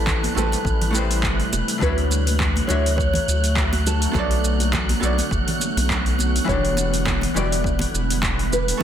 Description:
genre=sunset chillout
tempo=103 BPM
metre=4/4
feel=swing 56% on 16ths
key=unclear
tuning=A4 = 440 Hz
part: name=nylon-string guitar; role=melody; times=0.0-8.8 s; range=A4 to D5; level=-27 LUFS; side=equal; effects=ping-pong delay
part: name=archtop guitar, miked and amplified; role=accompaniment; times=0.0-8.8 s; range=D3 to E5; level=-27 LUFS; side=moving between left 7 dB and right 5 dB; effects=auto-pan, ping-pong delay
part: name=shimmering ambient pad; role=sustained chords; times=0.0-8.8 s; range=C3 to C#5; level=-28 LUFS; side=equal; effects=chorus, built-in reverb
part: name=round analog bass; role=bass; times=0.0-8.8 s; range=E1 to D2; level=-22 LUFS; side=equal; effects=none
part: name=wind-like tuned noise texture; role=texture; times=0.0-8.8 s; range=F#6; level=-30 LUFS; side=right 3 dB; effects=built-in reverb
part: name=deep house drum kit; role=drums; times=0.1-8.8 s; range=handclaps, hi-hat, shaker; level=-26 LUFS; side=right 1 dB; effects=overdrive, small room ambience
part: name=electronic kick drum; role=drums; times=0.1-8.8 s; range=none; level=-26 LUFS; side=equal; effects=overdrive, small room ambience
part: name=congas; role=percussion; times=0.1-8.8 s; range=none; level=-31 LUFS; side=right 2 dB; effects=none
room=light reverb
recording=dense, heavily limited modern master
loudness=-18 LUFS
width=side -9 dB against mid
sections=0.0-8.8 A section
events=none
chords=0.0 Am7; 1.8 Dmaj7; 4.1 Bm7; 6.5 Em7

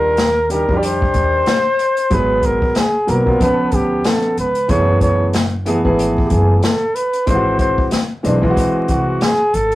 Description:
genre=hip hop, jazz-hop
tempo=93 BPM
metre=4/4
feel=swing 58% on 16ths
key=unclear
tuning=A4 = 445 Hz
part: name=warm flugelhorn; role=melody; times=0.0-9.8 s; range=F#4 to D5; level=-17 LUFS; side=equal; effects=none
part: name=warm concert grand piano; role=accompaniment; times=0.0-9.3 s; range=D#3 to A#4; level=-18 LUFS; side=equal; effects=none
part: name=upright bass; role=bass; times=0.0-9.8 s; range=F#1 to E#2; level=-20 LUFS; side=equal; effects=none
part: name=open jazz drum kit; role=drums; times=0.2-9.8 s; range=hi-hat, kick drum, snare drum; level=-20 LUFS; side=left 1 dB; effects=none
room=moderate studio reverb, RT60 0.5 s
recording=rough rehearsal-room recording, tube saturation, vinyl crackle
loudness=-13 LUFS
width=side -16 dB against mid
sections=0.0-9.8 A section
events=none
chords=0.0 D#maj9; 2.1 G#m9; 3.4 C#aug7; 4.7 F#m11; 7.3 G#7b13

